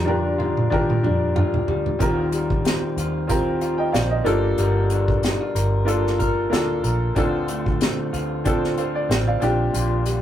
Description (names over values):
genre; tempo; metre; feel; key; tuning
indie pop, bedroom pop; 93 BPM; 4/4; swing 55% on 16ths; Eb lydian; A4 = 440 Hz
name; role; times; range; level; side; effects
bright upright piano; accompaniment; 0.0-10.2 s; Bb3 to G5; -24 LUFS; equal; none
electric guitar through a small old amp; accompaniment; 0.0-10.2 s; Bb2 to Bb4; -25 LUFS; left 2 dB; warbly pitch drift
vintage muted fingered electric bass; bass; 0.0-10.2 s; G1 to Eb3; -25 LUFS; equal; none
unplugged drum kit; drums; 0.1-10.2 s; hi-hat, kick drum, snare drum, toms; -24 LUFS; equal; none
room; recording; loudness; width
wet booth ambience, RT60 0.2 s; rough rehearsal-room recording; -19 LUFS; side -11 dB against mid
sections
0.0-2.0 A section; 2.0-10.2 B section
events
drum fill 0.0-2.0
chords
0.0 Ebmaj9; 2.0 Eb69; 4.3 Gm7; 7.2 Dm7; 9.4 Bb6